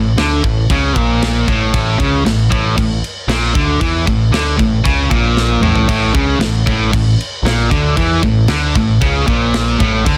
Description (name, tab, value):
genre	heavy metal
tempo	115 BPM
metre	4/4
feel	straight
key	unclear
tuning	A4 = 440 Hz
part	high-gain distorted guitar	riff	0.0-10.2 s	A2 to E3	-17 LUFS	equal	distortion
part	growling picked electric bass	bass	0.0-10.2 s	A1 to E2	-20 LUFS	equal	overdrive
part	tight metal drum kit	drums	0.2-10.2 s	crash cymbal, kick drum, snare drum, toms	-20 LUFS	equal	none
room	little or no reverb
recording	dense, heavily limited modern master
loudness	-14 LUFS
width	mono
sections	0.0-10.2 A section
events	drum fill 5.4-5.9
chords	0.0 A